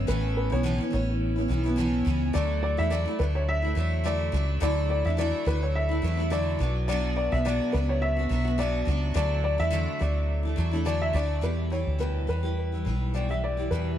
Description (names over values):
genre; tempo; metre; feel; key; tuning
acoustic pop; 106 BPM; 4/4; swing 55% on 16ths; D major; A4 = 437 Hz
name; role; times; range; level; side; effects
picked steel-string acoustic guitar; accompaniment; 0.0-14.0 s; E2 to G4; -30 LUFS; equal; double-tracked left and right
woody fretless electric bass; bass; 0.0-14.0 s; A1 to E2; -26 LUFS; equal; lush chorus
dark upright piano; melody; 0.1-14.0 s; B4 to E5; -30 LUFS; left 1 dB; tape echo
room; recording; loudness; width
light reverb, small room reverb; dark, warm production; -24 LUFS; side -11 dB against mid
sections
0.0-11.4 A section; 11.4-14.0 B section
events
none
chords
0.0 Aadd9; 2.3 Dadd9; 6.6 Bm; 9.2 Dadd9; 11.4 Em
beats
| 0.08 0.65 1.21 1.78 | 2.35 2.91 3.48 4.04 | 4.61 5.18 5.75 6.31 | 6.88 7.45 8.02 8.58 | 9.15 9.72 10.29 10.86 | 11.43 12.00 12.57 13.14 | 13.71